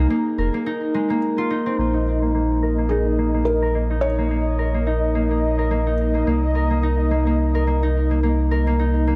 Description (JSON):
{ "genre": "IDM", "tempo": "107 BPM", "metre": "4/4", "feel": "swing 56% on 16ths", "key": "Bb minor", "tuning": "A4 = 440 Hz", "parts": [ { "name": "felt-muted upright piano", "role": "melody", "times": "0.0-5.9 s", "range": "Ab4 to Db5", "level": "-30 LUFS", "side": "equal", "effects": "digital delay" }, { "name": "concert harp", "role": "arpeggios", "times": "0.0-9.2 s", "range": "Ab3 to Bb4", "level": "-24 LUFS", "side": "equal", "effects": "low-pass filter, digital delay" }, { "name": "warm sub bass", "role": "bass", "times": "0.0-9.2 s", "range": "F1 to C2", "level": "-23 LUFS", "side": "equal", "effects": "none" }, { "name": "bubbling stepped-filter texture", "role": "texture", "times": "1.8-9.2 s", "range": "Eb5", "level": "-32 LUFS", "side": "equal", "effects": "chorus, built-in reverb" } ], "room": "moderate echo chamber reverb, RT60 2.7 s", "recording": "none", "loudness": "-21 LUFS", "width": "mono", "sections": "0.0-1.8 A section; 1.8-9.2 B section", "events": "filter sweep on harp 1.8-9.2", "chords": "0.0 Fm7; 1.8 Bbm; 6.3 Cm7", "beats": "0.10 0.66 1.22 | 1.78 2.35 2.90 3.47 | 4.03 4.59 5.15 5.71 | 6.27 6.83 7.39 7.95 | 8.51 9.07" }